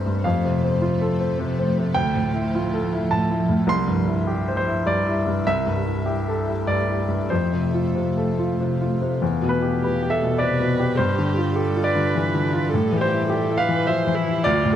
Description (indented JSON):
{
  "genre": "neoclassical piano and strings",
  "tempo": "92-107 BPM",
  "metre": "3/4",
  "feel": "rubato",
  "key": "A minor",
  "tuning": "A4 = 440 Hz",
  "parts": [
    { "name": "clear baby grand piano", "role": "accompaniment", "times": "0.0-14.8 s", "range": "C2 to C6", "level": "-20 LUFS", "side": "left 1 dB", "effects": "none" },
    { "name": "shimmering ambient pad", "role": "sustained chords", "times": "0.0-14.8 s", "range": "F3 to F5", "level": "-28 LUFS", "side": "right 1 dB", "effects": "chorus, built-in reverb" },
    { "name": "dark viola", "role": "accompaniment", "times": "9.8-14.8 s", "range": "E4 to C5", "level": "-26 LUFS", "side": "right 4 dB", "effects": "none" }
  ],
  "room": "light reverb",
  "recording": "none",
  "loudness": "-19 LUFS",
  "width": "side -10 dB against mid",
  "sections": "0.0-9.2 A section; 9.2-14.8 B section",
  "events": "none",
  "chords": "0.2 F; 2.0 Dmadd9; 3.7 C; 5.5 Am7/C; 7.3 F; 9.2 Em7; 11.0 G7sus4; 12.7 Am7",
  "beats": "| 0.24 0.81 1.38 | 1.96 2.53 3.11 | 3.69 4.28 4.87 | 5.47 6.06 6.67 | 7.30 7.95 8.59 | 9.21 9.81 10.40 | 10.99 11.57 12.14 | 12.72 13.30 13.88 | 14.45"
}